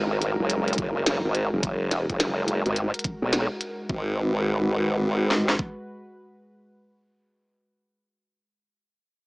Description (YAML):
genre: glitch hop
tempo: 106 BPM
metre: 4/4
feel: swing 64% on 16ths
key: G# minor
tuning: A4 = 440 Hz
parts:
  - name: warm analog pad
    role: sustained chords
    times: 0.0-6.9 s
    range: G#3 to B4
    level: -32 LUFS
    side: equal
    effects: chorus, vintage 12-bit sampler grit, sidechain pumping
  - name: formant-sweep wobble bass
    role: bass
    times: 0.0-5.6 s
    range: F#1 to B1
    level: -24 LUFS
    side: equal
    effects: chorus, tube saturation
  - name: glitchy drum kit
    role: drums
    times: 0.2-3.8 s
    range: hi-hat, snare drum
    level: -28 LUFS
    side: equal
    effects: none
  - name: drum and bass drum kit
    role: drums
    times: 0.8-5.8 s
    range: kick drum, snare drum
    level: -26 LUFS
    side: equal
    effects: overdrive
room: light reverb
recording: small speaker sound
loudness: -23 LUFS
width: side -33 dB against mid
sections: 0.0-3.9 A section; 3.9-6.2 B section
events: none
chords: 0.0 G#7(no3); 3.9 G#m7